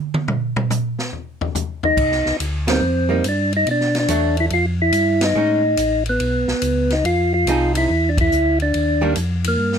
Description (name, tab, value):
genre	soul jazz organ trio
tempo	142 BPM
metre	4/4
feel	swing 67% on 8ths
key	unclear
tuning	A4 = 440 Hz
part	swinging big-band drum kit	drums	0.1-9.8 s	crash cymbal, hi-hat, kick drum, ride cymbal, snare drum, toms	-24 LUFS	equal	none
part	percussive tonewheel organ	melody	1.9-9.8 s	Bb3 to F4	-18 LUFS	equal	slow rotary speaker
part	mellow tonewheel organ	bass	2.0-9.8 s	A1 to B2	-22 LUFS	equal	chorus vibrato, slow rotary speaker
part	archtop guitar, miked and amplified	accompaniment	2.7-9.2 s	Eb3 to Ab4	-22 LUFS	right 6 dB	none
room	light reverb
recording	close, detailed microphones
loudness	-16 LUFS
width	side -7 dB against mid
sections	0.0-2.0 A section; 2.0-9.8 B section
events	tonewheel organ solo 0.0-2.0; drum solo 0.0-2.0; band accent 2.6, 5.1, 8.1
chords	0.0 N.C.; 2.0 Cm7; 3.7 Bm7; 4.5 Ebadd9/F; 5.4 Amaj9#11; 7.0 Fm7; 7.9 Dsus2; 8.7 Ebmaj7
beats	| 0.29 0.71 1.13 1.55 | 1.98 2.40 2.82 3.24 | 3.67 4.09 4.51 4.93 | 5.36 5.78 6.20 6.62 | 7.05 7.47 7.89 8.31 | 8.74 9.16 9.58